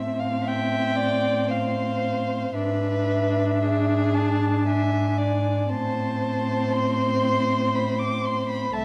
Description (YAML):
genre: classical, slow romantic movement for string quartet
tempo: 58 BPM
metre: 3/4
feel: rubato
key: A minor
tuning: A4 = 439 Hz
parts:
  - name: muted violin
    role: melody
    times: 0.0-8.8 s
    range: E5 to D6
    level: -31 LUFS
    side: equal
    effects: none
  - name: muted viola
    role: accompaniment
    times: 0.0-8.8 s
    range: A3 to D4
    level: -29 LUFS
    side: equal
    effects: none
  - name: muted cello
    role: bass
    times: 0.0-8.8 s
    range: C2 to A2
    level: -29 LUFS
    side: equal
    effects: none
  - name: muted violin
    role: second line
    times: 0.4-8.8 s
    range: G#4 to E5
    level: -30 LUFS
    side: equal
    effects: none
room: wet recital hall reverb, RT60 1.6 s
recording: none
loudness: -24 LUFS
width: mono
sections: 0.0-8.8 A section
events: none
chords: 0.0 Am; 2.6 E7/G#; 5.7 Am